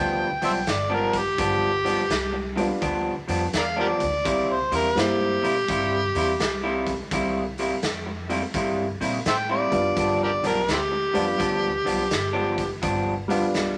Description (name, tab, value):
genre	electric blues shuffle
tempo	84 BPM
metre	4/4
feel	swing 65% on 8ths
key	G mixolydian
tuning	A4 = 440 Hz
part	overdriven harmonica	melody	0.0-12.8 s	C4 to G5	-26 LUFS	equal	none
part	electric guitar through a small old amp	riff	0.0-13.5 s	G2 to E4	-29 LUFS	equal	none
part	upright bass	bass	0.0-13.8 s	F#1 to Bb2	-36 LUFS	equal	none
part	raw garage drum kit	drums	0.4-13.8 s	hi-hat, kick drum, snare drum	-33 LUFS	equal	none
part	dark grand piano	accompaniment	2.6-5.4, 9.7-13.8 s	G3 to F4	-28 LUFS	equal	none
room	moderate studio reverb, RT60 0.5 s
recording	none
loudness	-24 LUFS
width	mono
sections	0.0-13.8 A section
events	none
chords	0.0 G7; 4.3 C7; 10.0 G7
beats	0.68 | 1.40 2.11 2.82 3.54 | 4.25 4.97 5.68 6.39 | 7.11 7.82 8.54 9.25 | 9.97 10.68 11.40 12.11 | 12.83 13.54